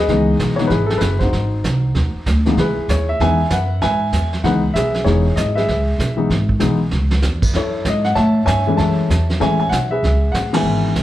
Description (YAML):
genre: jazz piano trio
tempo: 193 BPM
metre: 4/4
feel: swing 63% on 8ths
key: C# minor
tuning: A4 = 439 Hz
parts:
  - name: warm baby grand piano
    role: melody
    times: 0.0-11.0 s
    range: C#2 to A5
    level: -18 LUFS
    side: left 2 dB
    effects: plate reverb
  - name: upright bass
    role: bass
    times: 0.0-11.0 s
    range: E1 to A2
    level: -18 LUFS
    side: equal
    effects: none
  - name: vintage brush drum kit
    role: drums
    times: 0.1-11.0 s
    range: brushed snare drum, crash cymbal, hi-hat, kick drum, ride cymbal, snare drum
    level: -23 LUFS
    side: right 2 dB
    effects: none
room: wet studio reverb, RT60 0.6 s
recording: heard from further back in the room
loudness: -15 LUFS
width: side -14 dB against mid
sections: 0.0-2.6 A section; 2.6-11.0 A section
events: drum fill 6.9-7.2; band accent 10.5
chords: 0.1 C#m7; 1.3 G#7; 2.6 C#m7; 7.5 F#m7; 10.0 C#m7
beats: | 0.08 0.39 0.70 1.01 | 1.32 1.63 1.94 2.25 | 2.56 2.88 3.19 3.50 | 3.81 4.12 4.43 4.74 | 5.05 5.37 5.68 5.99 | 6.30 6.61 6.92 7.23 | 7.54 7.85 8.16 8.47 | 8.78 9.09 9.40 9.71 | 10.03 10.34 10.64 10.96